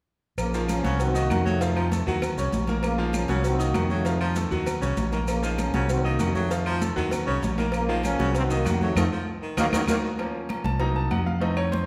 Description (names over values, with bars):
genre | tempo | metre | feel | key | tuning
latin, salsa | 196 BPM | 4/4 | straight | Bb harmonic minor | A4 = 441 Hz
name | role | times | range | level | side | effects
clear trombone section | melody | 0.4-10.0 s | C3 to Gb4 | -31 LUFS | equal | none
fingered electric bass | bass | 0.4-11.8 s | Bb1 to F2 | -29 LUFS | equal | none
agogo bells and timbales | percussion | 0.4-11.9 s | none | -39 LUFS | equal | none
claves | percussion | 0.4-11.7 s | none | -43 LUFS | equal | none
congas | percussion | 0.4-11.9 s | none | -34 LUFS | equal | none
cowbell | percussion | 0.4-11.9 s | none | -39 LUFS | equal | none
maracas | percussion | 0.4-10.0 s | none | -44 LUFS | equal | none
breathy baritone saxophone | second line | 0.5-10.1 s | Db3 to Gb3 | -36 LUFS | equal | none
bright baby grand piano | accompaniment | 0.5-11.9 s | Eb3 to Eb6 | -33 LUFS | equal | none
room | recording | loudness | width
wet recital hall reverb, RT60 1.5 s | recorded in a church or concert hall | -25 LUFS | mono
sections
0.4-10.2 A section; 10.2-11.9 B section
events
band accent 9.0-10.2; drum fill 9.7-10.2; grand piano solo 10.2-11.9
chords
0.4 Bbm; 1.0 Cm7b5; 1.6 F7; 2.2 Ebm7; 2.8 Bbm; 3.4 Cm7b5; 4.1 F7; 4.7 Ebm7; 5.3 Bbm; 5.9 Cm7b5; 6.5 F7; 7.1 Ebm7; 7.7 Bbm; 8.3 Cm7b5; 9.0 F7; 9.6 Ebm7; 10.2 Bbm; 10.8 Cm7b5